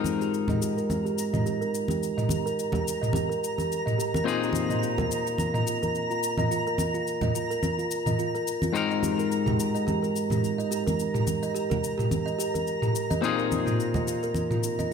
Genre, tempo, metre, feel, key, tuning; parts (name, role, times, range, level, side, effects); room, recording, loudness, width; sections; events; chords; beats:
sunset chillout; 107 BPM; 4/4; swing 56% on 16ths; Ab major; A4 = 441 Hz
semi-hollow electric guitar; accompaniment; 0.0-14.9 s; Ab2 to Bb4; -30 LUFS; moving between left 8 dB and right 6 dB; auto-pan, tape echo
kalimba; arpeggios; 0.0-14.9 s; F4 to Eb5; -30 LUFS; right 3 dB; low-pass filter, tape echo
congas; percussion; 0.0-14.9 s; -32 LUFS; equal
twinkling granular texture; texture; 0.6-14.9 s; Bb5; -34 LUFS; equal; built-in reverb
electronic shaker and toms; drums; 0.1-14.9 s; -32 LUFS; equal
moderate recital hall reverb, RT60 1.6 s, digital ambience; -24 LUFS; side -6 dB against mid
0.0-14.9 A section
filter sweep on kalimba 0.0-14.9
0.0 Abmaj9; 4.3 Bb9sus4; 8.7 Abmaj9; 13.2 Bb9sus4
0.34 0.90 1.46 | 2.02 2.58 3.14 3.70 | 4.26 4.82 5.38 5.94 | 6.50 7.07 7.62 8.19 | 8.75 9.31 9.87 10.43 | 10.99 11.55 12.11 12.67 | 13.23 13.79 14.35 14.91